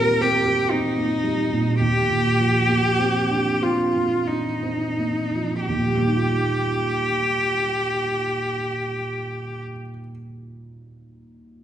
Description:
classical, impressionist duo for cello and grand piano; 41-59 BPM; 3/4; rubato; Eb major; A4 = 440 Hz
clear cello; melody; 0.0-9.6 s; Eb4 to Bb4; -22 LUFS; equal
dark baby grand piano; accompaniment; 0.0-11.6 s; Eb2 to G4; -24 LUFS; right 2 dB
wet recital hall reverb, RT60 1.6 s; recorded in a church or concert hall, nothing above 10.5 kHz; -20 LUFS; side -10 dB against mid
0.0-5.7 A section; 5.7-9.6 B section
slowing down 0.0-5.7
0.0 Eb6; 1.8 Cm11/Eb; 5.7 Ebadd9

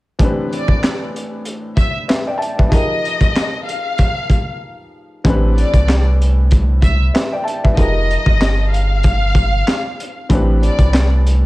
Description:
hip hop, boom-bap hip-hop; 95 BPM; 4/4; swing 57% on 16ths; A minor; A4 = 441 Hz
warm upright piano; accompaniment; 0.2-11.5 s; A2 to A5; -23 LUFS; left 1 dB; cassette tape, high-pass filter, low-pass filter
crunchy breakbeat drum kit; drums; 0.2-11.4 s; handclaps, hi-hat, kick drum, snare drum; -16 LUFS; equal; vintage 12-bit sampler grit
warm studio violin section; melody; 0.5-11.1 s; D5 to F5; -22 LUFS; left 1 dB; high-pass filter, low-pass filter, digital delay
warm sub bass; bass; 5.2-11.5 s; F1 to C2; -14 LUFS; equal
studio ambience; -13 LUFS; side -19 dB against mid
0.2-5.2 A section; 5.2-11.5 B section
break 4.6-5.2
0.2 Am11; 2.7 Fm11; 5.2 Am11; 7.8 Fm11; 10.3 Am11

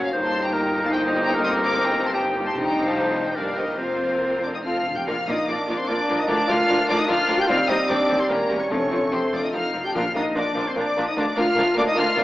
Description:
classical, dramatic, fast romantic movement for symphony orchestra; 148 BPM; 3/4; rubato; Bb major; A4 = 440 Hz
warm symphonic violin section; melody; 0.0-12.2 s; Eb5 to G6; -29 LUFS; left 1 dB
bright small flute group; second line; 0.0-12.2 s; Bb4 to C6; -26 LUFS; left 1 dB
clear clarinet; second line; 0.0-12.2 s; C4 to C#5; -28 LUFS; equal
warm French horn section; sustained chords; 0.0-12.2 s; G3 to G4; -27 LUFS; left 1 dB
warm symphonic violin section; second line; 0.1-12.2 s; D4 to D5; -31 LUFS; left 1 dB
bright symphonic viola section; accompaniment; 0.1-12.2 s; F3 to F4; -29 LUFS; equal
clear chamber double bass section; bass; 0.1-12.2 s; E1 to Eb2; -34 LUFS; right 1 dB
warm symphonic cello section; bass; 0.1-12.2 s; D2 to Bb2; -33 LUFS; right 1 dB
timpani; percussion; 2.5-5.0, 8.7-10.5 s; F2 to Bb2; -37 LUFS; equal
mellow bassoon; accompaniment; 5.1-12.2 s; G3 to Bb3; -27 LUFS; right 1 dB
wet recital hall reverb, RT60 1.7 s; AM radio sound; -20 LUFS; side -15 dB against mid
0.0-5.1 A section; 5.1-12.2 B section
timpani fill 4.6-5.1
0.1 Eb/G; 1.3 Cm7/G; 2.5 F9; 3.4 Gm; 3.8 Fsus4; 4.6 F; 5.1 Bb; 6.3 Bb/D; 7.5 Cm/Eb; 8.3 Edim7; 8.7 F; 9.9 Bb; 11.2 Bb/D

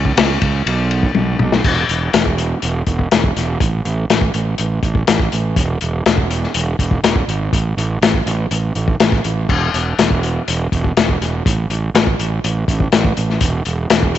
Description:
psychedelic rock; 122 BPM; 4/4; straight; A4 = 440 Hz
fuzz fingered electric bass; bass; 0.0-14.2 s; E1 to C#2; -18 LUFS; right 2 dB; overdrive
vintage drum kit; drums; 0.1-14.2 s; crash cymbal, hi-hat, kick drum, ride cymbal, snare drum, toms; -16 LUFS; left 3 dB
light reverb; 1960s-style stereo, nothing above 7.9 kHz; -14 LUFS; side -11 dB against mid
0.0-1.6 A section; 1.6-14.2 B section
drum fill 1.2-1.6

